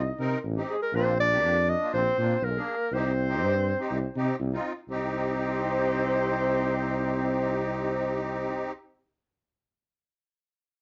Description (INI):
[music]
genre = klezmer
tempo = 121 BPM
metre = 4/4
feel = straight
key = C minor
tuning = A4 = 440 Hz
[part]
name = mellow clarinet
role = melody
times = 0.0-8.7 s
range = Ab4 to Eb5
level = -31 LUFS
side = equal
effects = none
[part]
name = trombone with straight mute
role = second line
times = 0.0-8.7 s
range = Ab3 to Eb4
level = -36 LUFS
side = equal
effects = none
[part]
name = musette accordion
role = accompaniment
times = 0.0-8.7 s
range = Bb3 to Bb4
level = -33 LUFS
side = equal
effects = none
[part]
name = mellow tuba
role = bass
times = 0.0-8.7 s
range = A1 to C3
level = -32 LUFS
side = equal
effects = none
[sound]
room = light reverb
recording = dark, warm production, nothing above 7.6 kHz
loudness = -27 LUFS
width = mono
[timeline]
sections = 0.0-4.9 A section; 4.9-8.9 B section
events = none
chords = 0.0 Cm; 0.9 Bb; 2.9 Cm